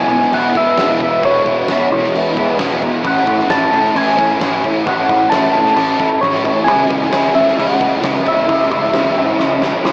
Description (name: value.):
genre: rock, shoegaze and dream pop.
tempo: 132 BPM.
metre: 4/4.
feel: straight.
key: unclear.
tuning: A4 = 441 Hz.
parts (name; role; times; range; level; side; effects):
soft struck synth lead; melody; 0.0-9.8 s; C#5 to A5; -15 LUFS; equal; chorus, phaser, cassette tape, tape echo.
overdriven semi-hollow guitar; riff; 0.0-9.9 s; E2 to E4; -15 LUFS; equal; ensemble chorus.
growling picked electric bass; bass; 0.0-9.9 s; E1 to C#2; -24 LUFS; equal; overdrive.
huge arena drum kit; drums; 0.1-9.9 s; crash cymbal, kick drum, snare drum; -22 LUFS; equal; cassette tape.
room: moderate booth ambience, RT60 0.2 s.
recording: home recording on cassette, small speaker sound.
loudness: -11 LUFS.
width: side -32 dB against mid.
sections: 0.0-9.9 A section.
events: drum fill 9.4-9.9.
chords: 0.0 E6; 3.0 A6; 6.7 C#m.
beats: 0.33 0.78 | 1.24 1.69 2.14 2.60 | 3.05 3.50 3.96 4.41 | 4.87 5.32 5.77 6.23 | 6.68 7.14 7.59 8.04 | 8.50 8.95 9.41 9.86.